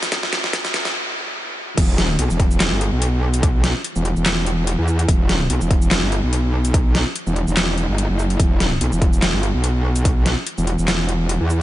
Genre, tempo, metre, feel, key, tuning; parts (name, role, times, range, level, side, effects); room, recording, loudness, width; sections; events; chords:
heavy wobble dubstep; 145 BPM; 4/4; swing 55% on 16ths, half-time; E minor; A4 = 440 Hz
dubstep drum kit; drums; 0.0-11.6 s; crash cymbal, handclaps, hi-hat, shaker, snare drum; -22 LUFS; equal; overdrive
electronic kick drum; drums; 0.1-10.1 s; -18 LUFS; equal; overdrive
metallic wobble bass; bass; 1.8-11.6 s; E1 to E2; -18 LUFS; equal; distortion, chorus, overdrive
light reverb; high-pass filter, nothing above 10.6 kHz; -16 LUFS; side -15 dB against mid
0.0-1.8 A section; 1.8-11.6 B section
build-up 0.0-1.8; drum fill 0.0-0.9; stop 0.9-1.8; drop 1.8-11.6